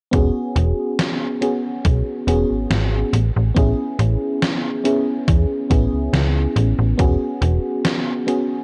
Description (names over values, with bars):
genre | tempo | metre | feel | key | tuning
vaporwave | 70 BPM | 4/4 | swing 54% on 16ths | E major | A4 = 440 Hz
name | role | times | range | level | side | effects
mellow FM electric piano | accompaniment | 0.1-8.6 s | B3 to G#4 | -24 LUFS | equal | lush chorus, cassette tape, analog delay
slap-like FM bass | bass | 0.1-7.6 s | E1 to E2 | -20 LUFS | equal | none
electronic kick drum | drums | 0.1-7.2 s | none | -20 LUFS | equal | none
gated 80s digital drum machine | drums | 0.1-8.5 s | hi-hat, snare drum | -26 LUFS | equal | gated reverb, gated reverb snare
room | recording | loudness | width
little or no reverb | dark, warm production, cassette tape | -19 LUFS | mono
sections
0.1-8.6 A section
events
none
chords
0.1 E69; 3.1 Amaj9; 7.0 E69